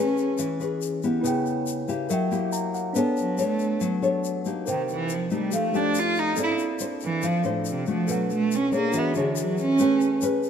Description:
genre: bossa nova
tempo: 140 BPM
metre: 4/4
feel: straight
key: unclear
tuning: A4 = 435 Hz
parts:
  - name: rich cello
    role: melody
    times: 0.0-0.4, 3.2-10.2 s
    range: A2 to F4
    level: -25 LUFS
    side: right 3 dB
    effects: none
  - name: nylon-string guitar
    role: accompaniment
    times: 0.0-10.5 s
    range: B2 to C#5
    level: -26 LUFS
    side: left 4 dB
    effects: none
  - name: tine electric piano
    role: accompaniment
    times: 0.0-10.5 s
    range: C4 to A#5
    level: -30 LUFS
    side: right 3 dB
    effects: none
  - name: tube shaker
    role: percussion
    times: 0.2-10.5 s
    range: none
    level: -38 LUFS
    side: left 10 dB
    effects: none
room: moderate plate reverb, RT60 3.1 s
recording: minimal, uncompressed stereo recording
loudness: -22 LUFS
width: side -8 dB against mid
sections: 0.0-10.5 A section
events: cello solo 0.0-10.5; tine electric piano fill 2.3-3.0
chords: 0.0 Amaj9; 1.2 C#m7b5; 2.1 F#7b9; 3.0 Bm9; 4.7 Cm7; 5.5 F9; 6.4 Bbmaj9; 8.1 Bm7; 8.9 E13; 9.8 Amaj9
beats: 0.39 0.82 | 1.25 1.67 2.10 2.53 | 2.96 3.38 3.81 4.24 | 4.67 5.09 5.52 5.95 | 6.38 6.80 7.23 7.66 | 8.09 8.51 8.94 9.37 | 9.80 10.23

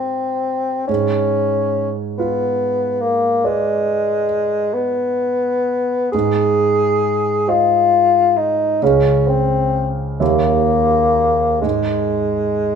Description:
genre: classical, romantic duo for bassoon and grand piano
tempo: 40-48 BPM (dotted quarters)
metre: 12/8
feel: rubato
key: unclear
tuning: A4 = 440 Hz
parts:
  - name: mellow bassoon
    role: melody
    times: 0.0-12.8 s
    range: Ab3 to Ab4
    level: -16 LUFS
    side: left 3 dB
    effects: none
  - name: warm grand piano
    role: accompaniment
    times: 0.0-12.8 s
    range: Db2 to F5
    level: -19 LUFS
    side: right 5 dB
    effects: none
room: moderate large studio reverb, RT60 1.4 s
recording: minimal, uncompressed stereo recording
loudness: -15 LUFS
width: side -7 dB against mid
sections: 0.0-12.8 A section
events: none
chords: 0.0 Ab; 0.9 Abdim7; 6.1 Ab; 8.8 Dbmaj7; 10.2 Eb7b9; 11.6 N.C.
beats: | 0.89 2.19 3.45 4.74 | 6.13 7.47 8.81 10.20 | 11.63

